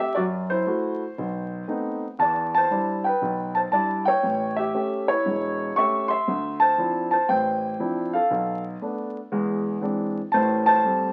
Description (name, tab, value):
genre	solo jazz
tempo	118 BPM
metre	4/4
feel	swing 67% on 8ths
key	A minor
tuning	A4 = 438 Hz
part	dark concert grand piano	solo	0.0-11.1 s	E1 to C#6	-24 LUFS	equal	none
room	light reverb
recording	very old 78 rpm record, vinyl crackle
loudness	-24 LUFS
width	mono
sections	0.0-11.1 A section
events	none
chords	0.2 F#m7b5; 1.2 B7b9; 2.2 Em7; 4.2 A7; 6.3 Dm9; 8.3 Bm7b5; 9.3 Eaug7; 10.3 Am7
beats	| 0.15 0.66 1.17 1.68 | 2.19 2.70 3.21 3.72 | 4.22 4.73 5.24 5.75 | 6.26 6.77 7.28 7.79 | 8.30 8.80 9.31 9.82 | 10.33 10.84